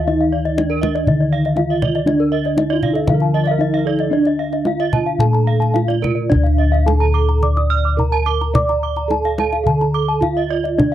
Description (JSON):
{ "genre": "Balinese gamelan", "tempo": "107-120 BPM", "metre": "4/4", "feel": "straight", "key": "D pelog", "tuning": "A4 = 440 Hz", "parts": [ { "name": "gamelan-type bronze metallophone", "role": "melody", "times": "0.0-10.9 s", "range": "D4 to D5", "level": "-22 LUFS", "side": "right 4 dB", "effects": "none" }, { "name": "gamelan-type bronze metallophone", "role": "accompaniment", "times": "0.0-6.3, 10.8-10.9 s", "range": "D3 to A3-30c", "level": "-25 LUFS", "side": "left 2 dB", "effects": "none" }, { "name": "gamelan-type bronze metallophone", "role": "arpeggios", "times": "0.0-10.9 s", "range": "Bb4-20c to Eb6+20c", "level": "-22 LUFS", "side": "left 6 dB", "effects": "none" }, { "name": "gamelan-type bossed gongs", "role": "bass", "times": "0.0-10.9 s", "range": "D2 to D5", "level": "-18 LUFS", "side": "left 1 dB", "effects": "none" }, { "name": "gamelan-type bronze metallophone", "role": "arpeggios", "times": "0.3-10.6 s", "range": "Bb4-20c to F6-30c", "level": "-23 LUFS", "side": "right 9 dB", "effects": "none" }, { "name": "kendang", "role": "percussion", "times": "0.5-10.9 s", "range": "none", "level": "-21 LUFS", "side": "left 1 dB", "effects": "none" }, { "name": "tine electric piano", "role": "second line", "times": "2.7-6.0 s", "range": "D4 to D5", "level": "-26 LUFS", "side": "right 1 dB", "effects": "fast stereo tremolo" } ], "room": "light reverb", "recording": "dry, close 1970s-style studio recording", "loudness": "-14 LUFS", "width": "side -12 dB against mid", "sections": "0.0-6.3 A section; 6.3-10.9 B section", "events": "none", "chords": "none" }